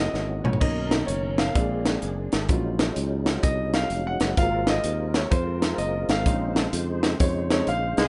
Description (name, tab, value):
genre	uptempo gospel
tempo	127 BPM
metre	4/4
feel	swing 64% on 8ths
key	unclear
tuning	A4 = 437 Hz
part	warm grand piano	accompaniment	0.0-8.1 s	Gb3 to Gb5	-31 LUFS	equal	none
part	tonewheel organ	sustained chords	0.0-8.1 s	Cb3 to C5	-34 LUFS	equal	slow rotary speaker, chorus vibrato
part	modern bright fingered electric bass	bass	0.0-8.1 s	F1 to F2	-31 LUFS	equal	none
part	crisp fusion drum kit	drums	0.1-8.1 s	crash cymbal, hi-hat, kick drum, snare drum, toms	-26 LUFS	equal	none
part	breathy tenor saxophone	melody	8.0-8.1 s	Ab3	-26 LUFS	equal	none
part	warm studio string section	melody	8.0-8.1 s	Ab4	-34 LUFS	equal	none
room	light reverb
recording	rough home demo mix, nothing above 10.9 kHz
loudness	-24 LUFS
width	mono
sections	0.0-8.1 A section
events	grand piano solo 0.0-8.1; drum fill 0.1-0.6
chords	0.0 Gb7; 0.6 Cbmaj9; 1.6 Bb7; 2.5 Ebm9/Bb; 4.4 Ab13; 6.3 Bbm11